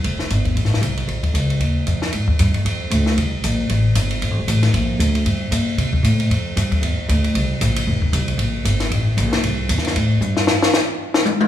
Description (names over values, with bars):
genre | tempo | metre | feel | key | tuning
jazz, small-group swing and bop | 230 BPM | 4/4 | swing 58% on 8ths | F major | A4 = 438 Hz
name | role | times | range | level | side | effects
upright bass | bass | 0.0-10.5 s | F1 to C3 | -18 LUFS | equal | none
compact cocktail drum kit | drums | 0.0-11.5 s | hi-hat, kick drum, ride cymbal, snare drum, toms | -21 LUFS | left 1 dB | none
room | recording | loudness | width
wet recital hall reverb, RT60 1.6 s | recorded in a church or concert hall, small room ambience | -16 LUFS | side -11 dB against mid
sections
0.0-2.1 A section; 2.1-10.5 B section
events
drum fill 10.2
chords
none